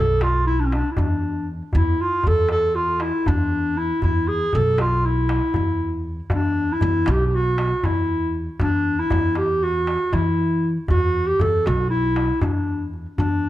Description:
Turkish makam ensemble; 236 BPM (eighths); 9/8; straight; E makam hicaz, E makam ussak from 6.3 s; A4 = 439 Hz
mellow clarinet; melody; 0.0-13.5 s; C#4-38c to A4; -21 LUFS; equal
upright bass; bass; 0.0-13.5 s; B1 to E3; -23 LUFS; equal
darbuka; percussion; 0.2-13.5 s; -25 LUFS; equal
light reverb; dark, warm production; -18 LUFS; side -14 dB against mid
0.0-6.3 A section; 6.3-13.5 B section
0.22 0.47 0.73 0.98 1.24 1.49 | 1.75 2.00 2.25 2.51 2.76 3.02 3.27 3.52 3.78 | 4.03 4.29 4.54 4.79 5.05 5.30 5.56 5.81 6.07 | 6.32 6.57 6.83 7.08 7.33 7.59 7.84 8.10 8.35 | 8.61 8.86 9.11 9.37 9.62 9.88 10.13 10.38 10.64 | 10.89 11.15 11.40 11.65 11.91 12.16 12.42 12.67 12.92 | 13.18 13.43

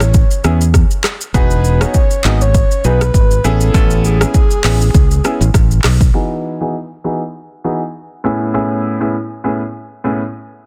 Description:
afrobeats; 100 BPM; 4/4; swing 55% on 16ths; E major; A4 = 439 Hz
breathy flute-like synth lead; melody; 0.0-5.8 s; G#4 to D#5; -23 LUFS; equal; chorus, tape echo
fingered electric bass; bass; 0.0-6.1 s; E1 to E2; -15 LUFS; equal
deep house drum kit; drums; 0.0-6.1 s; handclaps, hi-hat, kick drum, rim click, shaker; -15 LUFS; equal; overdrive
clear concert grand piano; accompaniment; 0.4-10.2 s; A2 to A4; -21 LUFS; equal; low-pass filter
digital ambience; dense, heavily limited modern master; -14 LUFS; mono
0.0-6.1 A section; 6.1-10.7 B section
filter sweep on grand piano 6.1-10.7
0.0 A; 1.3 Emaj7; 3.4 Amaj7; 6.1 Emaj7; 8.2 Amaj7
0.14 0.74 | 1.34 1.94 2.54 3.14 | 3.74 4.34 4.94 5.54 | 6.14 6.74 7.34 7.94 | 8.54 9.14 9.74

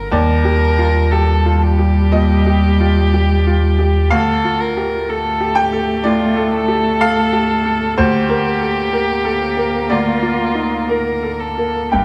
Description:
neoclassical piano and strings; 61 BPM; 4/4; rubato; A4 = 442 Hz
muted violin; melody; 0.0-12.0 s; F4 to Bb4; -22 LUFS; equal
bright upright piano; accompaniment; 0.0-12.0 s; D2 to G5; -21 LUFS; equal
warm sub bass; bass; 0.0-12.0 s; G1 to Eb2; -21 LUFS; equal
muted cello; second line; 0.1-12.0 s; G3 to Bb3; -23 LUFS; equal
wet recital hall reverb, RT60 1.4 s; recorded in a church or concert hall; -16 LUFS; mono
0.1-12.0 A section
0.1 Ebadd9; 4.1 Dm; 8.0 Bb/D
| 0.12 1.12 2.13 3.13 | 4.11 5.08 6.05 7.02 | 7.98 8.93 9.90 10.88 | 11.92

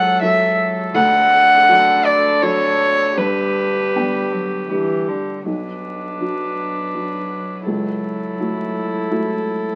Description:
neoclassical piano and strings; 81 BPM; 3/4; rubato; B minor; A4 = 440 Hz
warm violin; melody; 0.0-9.8 s; A4 to F#5; -19 LUFS; equal
clear cello; second line; 0.0-9.8 s; D3 to G3; -29 LUFS; equal
felt-muted upright piano; accompaniment; 0.0-9.8 s; B1 to G5; -27 LUFS; equal
rich viola; accompaniment; 0.0-9.8 s; D4 to A4; -28 LUFS; equal
saturated sub bass; bass; 0.0-9.8 s; G1 to D2; -39 LUFS; equal
moderate studio reverb, RT60 0.8 s; very old 78 rpm record, vinyl crackle, nothing above 10.9 kHz; -18 LUFS; mono
0.0-5.5 A section; 5.5-9.8 B section
0.0 F#m7/C#; 1.0 D; 3.2 G; 5.5 Bm; 7.7 F#m7/C#
0.23 | 0.95 1.69 2.43 | 3.18 3.94 4.71 | 5.47 6.21 6.95 | 7.68 8.41 9.13

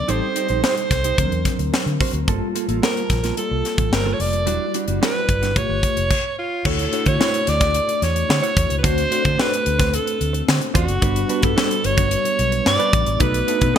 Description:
polished 1980s jazz-funk pop; 110 BPM; 4/4; straight; A4 = 440 Hz
clear alto saxophone; melody; 0.0-13.8 s; E#4 to D5; -22 LUFS; right 1 dB
mellow tine electric piano; accompaniment; 0.0-13.8 s; F3 to A5; -26 LUFS; left 1 dB; medium stereo tremolo, lush chorus
mellow electric guitar; riff; 0.1-13.8 s; G3 to D5; -28 LUFS; right 7 dB; wide subtle chorus
vintage muted fingered electric bass; bass; 0.1-13.7 s; E1 to D3; -23 LUFS; equal
crisp fusion drum kit; drums; 0.1-13.8 s; crash cymbal, hi-hat, kick drum, snare drum; -21 LUFS; left 1 dB
light reverb, small room ambience; bright 1980s-style digital production; -17 LUFS; side -9 dB against mid
0.0-6.7 A section; 6.7-13.8 B section
stop 6.1-6.7
0.1 Am7b5; 1.2 D7b13; 2.3 Gm9; 4.5 Em9; 5.6 A7b13; 6.7 Dmaj9; 8.8 D7; 11.0 Gmaj7; 13.2 B7
| 0.09 0.64 1.18 1.73 | 2.28 2.83 3.37 3.92 | 4.47 5.01 5.56 6.11 | 6.65 7.20 7.75 8.29 | 8.84 9.38 9.93 10.47 | 11.02 11.57 12.11 12.66 | 13.20 13.75

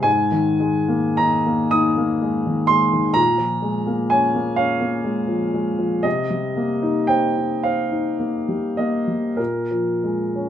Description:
classical, impressionist solo piano; 32-44 BPM (dotted quarters); 6/8; rubato; A4 = 441 Hz
warm concert grand piano; solo; 0.0-10.5 s; Ab2 to Eb6; -18 LUFS; equal
moderate stone room reverb, RT60 1.0 s; -18 LUFS; side -10 dB against mid
0.0-10.5 A section
0.1 Absus2; 3.2 Bbm7; 6.1 Cm7; 9.4 Bbm7
| 0.06 1.74 | 3.18 4.61 | 6.05 7.63 | 9.38

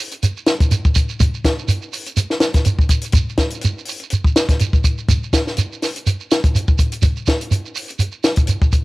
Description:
afrobeat; 123 BPM; 4/4; swing 55% on 16ths
compact cocktail drum kit; drums; 0.1-8.8 s; hi-hat, kick drum, snare drum; -16 LUFS; equal
shekere; percussion; 0.1-8.8 s; -20 LUFS; right 2 dB
studio ambience; home recording on cassette; -15 LUFS; side -20 dB against mid
0.0-8.8 A section
0.22 0.71 | 1.20 1.68 2.17 2.66 | 3.14 3.63 4.12 4.60 | 5.09 5.58 6.06 6.55 | 7.03 7.52 8.01 8.49

